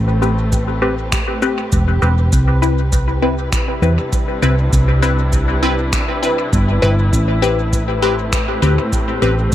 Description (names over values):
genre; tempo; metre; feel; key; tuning
ambient dub; 100 BPM; 4/4; swing 53% on 16ths; A minor; A4 = 440 Hz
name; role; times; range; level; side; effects
warm studio string section; sustained chords; 0.0-9.5 s; A2 to B4; -23 LUFS; equal; none
hollow-body short-scale fingered electric bass; bass; 0.0-9.5 s; E1 to E2; -15 LUFS; equal; none
filtered dub chord stab; stabs; 0.2-9.4 s; C4 to B4; -19 LUFS; left 2 dB; phaser, dub echo
electronic cabasa and finger snaps; drums; 0.2-9.5 s; none; -26 LUFS; right 1 dB; dub echo
electronic kick drum; drums; 0.5-9.5 s; none; -20 LUFS; equal; overdrive
room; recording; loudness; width
light reverb; echo-heavy mix; -13 LUFS; side -12 dB against mid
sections
0.0-9.5 A section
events
fade-in on string section 0.0-9.5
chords
0.0 Am9; 2.3 Cmaj7; 7.1 Am9